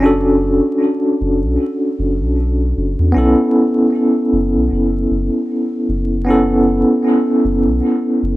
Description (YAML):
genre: trip hop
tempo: 77 BPM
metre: 4/4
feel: swing 56% on 16ths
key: unclear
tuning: A4 = 439 Hz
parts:
  - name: bell-like tine electric piano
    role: accompaniment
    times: 0.0-8.4 s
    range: B3 to A4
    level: -14 LUFS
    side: equal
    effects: tremolo, vintage 12-bit sampler grit, tape echo
  - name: soft dub sub bass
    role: bass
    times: 0.0-8.4 s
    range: F#1 to E2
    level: -18 LUFS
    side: equal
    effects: tube saturation
room: moderate spring reverb, RT60 2.0 s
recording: vinyl crackle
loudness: -13 LUFS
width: side -17 dB against mid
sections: 0.0-8.4 A section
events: none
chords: 0.0 Bm7; 3.2 Aadd9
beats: | 0.03 0.81 1.59 2.37 | 3.15 3.93 4.71 5.49 | 6.27 7.05 7.83